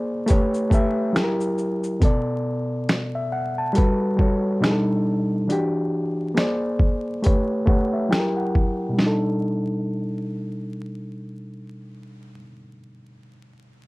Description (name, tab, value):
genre	lo-fi hip hop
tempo	69 BPM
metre	4/4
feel	swing 59% on 16ths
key	B minor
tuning	A4 = 444 Hz
part	overdriven reed electric piano	accompaniment	0.0-13.9 s	B2 to A5	-22 LUFS	equal	cassette tape, low-pass filter
part	boom bap sampler-style drum kit	drums	0.3-9.2 s	finger snaps, hi-hat, kick drum, shaker, snare drum	-20 LUFS	equal	overdrive
room	moderate studio reverb, RT60 0.6 s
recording	vinyl crackle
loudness	-20 LUFS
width	side -22 dB against mid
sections	0.0-9.0 A section; 9.0-12.4 B section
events	filter sweep on reed electric piano 0.0-9.0; reed electric piano fill 7.2-9.0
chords	0.3 A9; 1.1 F#7b9; 2.0 Bm7; 3.8 Gmaj9; 4.6 B7alt; 5.5 Em9; 6.4 A#9; 7.2 A9; 8.1 F#7b9; 9.0 B7alt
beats	0.28 1.15 | 2.02 2.88 3.75 4.62 | 5.49 6.36 7.23 8.10 | 8.97 9.84 10.71 11.58